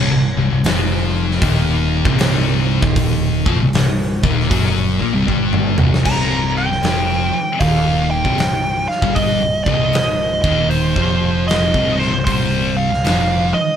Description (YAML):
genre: stoner and doom metal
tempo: 77 BPM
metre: 4/4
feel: swing 65% on 8ths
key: C minor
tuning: A4 = 440 Hz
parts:
  - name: thick fuzz guitar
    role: riff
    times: 0.0-13.6 s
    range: C2 to Bb3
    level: -19 LUFS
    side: left 5 dB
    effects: distortion
  - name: thick fuzz guitar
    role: riff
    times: 0.0-13.6 s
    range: C2 to Bb3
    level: -22 LUFS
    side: right 8 dB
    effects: distortion
  - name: modern bright picked electric bass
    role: bass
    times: 0.0-13.6 s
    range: C1 to Bb1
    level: -22 LUFS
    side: equal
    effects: overdrive
  - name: big rock drum kit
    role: drums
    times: 0.6-13.3 s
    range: crash cymbal, hi-hat, kick drum, snare drum, toms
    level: -20 LUFS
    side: equal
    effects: none
  - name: fuzz lead guitar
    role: melody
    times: 6.1-13.8 s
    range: C5 to Bb5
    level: -19 LUFS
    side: right 2 dB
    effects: wah, distortion
room: light reverb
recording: band playing live in one room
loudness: -14 LUFS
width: side -8 dB against mid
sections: 0.0-6.1 A section; 6.1-13.8 B section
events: drum fill 5.3-6.1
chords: 0.0 Cm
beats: 0.65 1.42 2.20 | 2.97 3.74 4.52 5.29 | 6.07 6.84 7.62 8.39 | 9.17 9.95 10.72 11.50 | 12.28 13.05